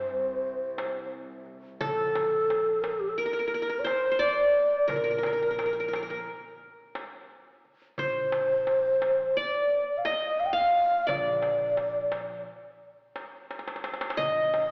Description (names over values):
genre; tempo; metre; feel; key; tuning
Turkish makam ensemble; 175 BPM (eighths); 9/8; straight; Bb makam rast; A4 = 440 Hz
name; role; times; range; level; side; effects
mellow low ney; melody; 0.0-14.7 s; G4 to G5; -28 LUFS; equal; none
qanun; second line; 0.0-14.7 s; A4 to F5; -33 LUFS; equal; none
upright bass; bass; 0.0-14.7 s; Bb1; -49 LUFS; equal; none
dark symphonic cello section; drone; 0.0-1.9 s; C2; -48 LUFS; equal; none
darbuka; percussion; 0.8-14.7 s; none; -41 LUFS; equal; none
room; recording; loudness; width
wet scoring stage reverb, RT60 2.0 s; recorded in a church or concert hall, AM radio sound; -27 LUFS; mono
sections
0.0-1.8 A section; 1.8-14.7 B section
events
drum fill 13.5-14.2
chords
none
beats
0.09 0.44 0.78 1.12 1.47 | 1.81 2.15 2.50 2.84 3.18 3.52 3.87 4.21 4.55 | 4.90 5.24 5.58 5.93 6.27 6.62 6.96 7.30 7.65 | 7.99 8.33 8.68 9.02 9.37 9.71 10.05 10.40 10.74 | 11.08 11.43 11.77 12.12 12.46 12.80 13.15 13.49 13.84 | 14.18 14.52